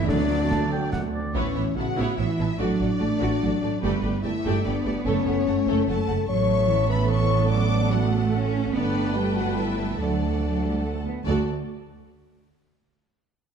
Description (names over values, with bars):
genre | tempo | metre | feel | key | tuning
cinematic, heroic adventure film score | 145 BPM | 3/4 | straight | D major | A4 = 440 Hz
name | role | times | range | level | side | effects
rich symphonic violin section | melody | 0.0-11.5 s | B4 to D6 | -35 LUFS | left 2 dB | none
bright clarinet | second line | 0.0-0.9 s | D4 | -38 LUFS | left 4 dB | none
bright concert flute | second line | 0.0-0.9 s | D5 to E5 | -36 LUFS | left 5 dB | none
warm symphonic violin section | second line | 0.0-11.5 s | F#4 to A5 | -37 LUFS | left 3 dB | none
rich symphonic viola section | accompaniment | 0.0-11.5 s | F#3 to B4 | -30 LUFS | right 2 dB | none
mellow French horn section | sustained chords | 0.0-11.4 s | B3 to D5 | -28 LUFS | left 6 dB | none
rich symphonic cello section | bass | 0.0-11.5 s | D2 to C#4 | -28 LUFS | right 4 dB | none
rich symphonic double bass section | bass | 0.0-11.5 s | F#1 to D2 | -26 LUFS | right 4 dB | none
concert snare drum and concert bass drum | drums | 0.1-1.1 s | none | -30 LUFS | equal | none
warm oboe | second line | 0.5-1.3 s | D5 to A5 | -32 LUFS | right 2 dB | none
room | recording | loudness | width
moderate scoring stage reverb, RT60 1.7 s | dark, warm production | -21 LUFS | side -7 dB against mid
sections
0.0-1.4 A section; 1.4-11.3 B section; 11.3-12.5 C section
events
none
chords
0.1 D; 1.4 Aadd9; 2.6 D/A; 3.8 Gadd9; 5.1 F#m; 6.3 Aadd9; 7.5 D/A; 8.7 Gadd9; 10.0 D